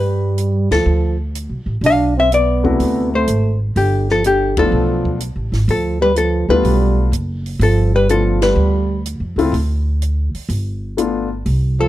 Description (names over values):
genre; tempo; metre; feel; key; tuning
jazz, small-group swing and bop; 125 BPM; 4/4; swing 69% on 8ths; G mixolydian; A4 = 440 Hz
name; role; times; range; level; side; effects
archtop guitar, miked and amplified; melody; 0.0-11.9 s; G4 to F5; -18 LUFS; left 3 dB; none
mellow trombone; second line; 0.0-11.9 s; D3 to D4; -20 LUFS; right 4 dB; none
upright bass; bass; 0.0-11.9 s; F#1 to G2; -18 LUFS; equal; none
compact cocktail drum kit; drums; 0.4-11.6 s; hi-hat, kick drum, ride cymbal, snare drum; -27 LUFS; right 1 dB; none
warm grand piano; accompaniment; 2.6-11.3 s; C3 to F#4; -19 LUFS; left 6 dB; none
room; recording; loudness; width
light reverb; dark, warm production; -14 LUFS; side -14 dB against mid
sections
0.0-3.8 A section; 3.8-11.9 A section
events
band accent 0.6, 4.5, 8.3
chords
0.0 G7; 2.8 D9; 3.8 G9; 9.5 N.C.; 10.5 G9